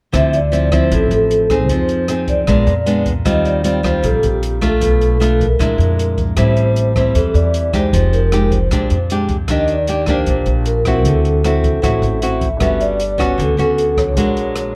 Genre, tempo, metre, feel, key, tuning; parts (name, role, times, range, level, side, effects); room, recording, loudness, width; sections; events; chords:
bossa nova; 154 BPM; 4/4; straight; D minor; A4 = 438 Hz
nylon-string guitar; accompaniment; 0.1-14.8 s; A2 to G#4; -20 LUFS; equal
upright bass; bass; 0.1-14.8 s; F1 to F2; -20 LUFS; equal
open jazz drum kit; drums; 0.1-14.6 s; hi-hat, kick drum, rim click; -24 LUFS; equal
vibraphone with soft mallets; melody; 0.2-14.8 s; G4 to E5; -21 LUFS; equal
warm grand piano; accompaniment; 12.6-14.8 s; D4 to F#5; -30 LUFS; equal
light reverb; -15 LUFS; mono
0.1-14.8 A section
0.1 Dm9; 1.7 Fm7; 2.5 Bb7b9; 3.3 Eb69; 4.8 Bm7b5; 5.6 Bb7#11; 6.4 Am7; 7.9 Fm9; 8.7 Bb13; 9.5 Ebmaj7; 11.0 D9; 12.6 Gmaj9#11; 14.2 Bb7alt